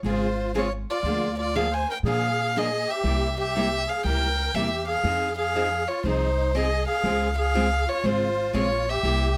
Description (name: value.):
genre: acoustic string swing (jazz manouche).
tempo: 120 BPM.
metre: 4/4.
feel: swing 65% on 8ths.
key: unclear.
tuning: A4 = 441 Hz.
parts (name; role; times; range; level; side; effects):
picked steel-string acoustic guitar; accompaniment; 0.0-9.3 s; C3 to Ab4; -35 LUFS; equal; none.
upright bass; bass; 0.0-9.4 s; Ab1 to Bb2; -30 LUFS; equal; none.
warm violin; melody; 0.1-9.4 s; C5 to Ab5; -28 LUFS; equal; none.
musette accordion; second line; 0.1-9.4 s; Eb4 to C5; -33 LUFS; equal; none.
picked steel-string acoustic guitar; accompaniment; 0.1-9.3 s; C3 to Ab4; -33 LUFS; equal; none.
room: light reverb.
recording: none.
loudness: -25 LUFS.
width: mono.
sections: 0.0-9.4 A section.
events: none.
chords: 0.0 Dbmaj7; 1.0 Bb7/D; 3.0 C7; 5.0 Fm7; 7.0 Dbmaj7.